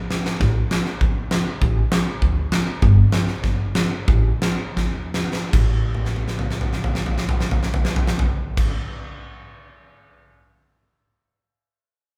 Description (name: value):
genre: klezmer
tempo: 74-99 BPM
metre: 2/4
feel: straight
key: unclear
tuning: A4 = 440 Hz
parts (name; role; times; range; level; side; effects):
- upright bass; bass; 0.0-8.7 s; G1 to F2; -24 LUFS; equal; none
- huge arena drum kit; drums; 0.1-10.2 s; crash cymbal, kick drum, snare drum, toms; -23 LUFS; equal; none
room: wet large studio reverb, RT60 1.0 s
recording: band playing live in one room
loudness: -21 LUFS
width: mono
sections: 0.0-5.5 A section; 5.5-8.8 B section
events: drum fill 0.0-0.4, 4.8-5.5, 5.9-8.6; slowing down 2.8-5.5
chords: none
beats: | 0.40 1.01 | 1.61 2.22 | 2.83 3.44 | 4.08 4.77 | 5.53 6.34 | 7.15 7.96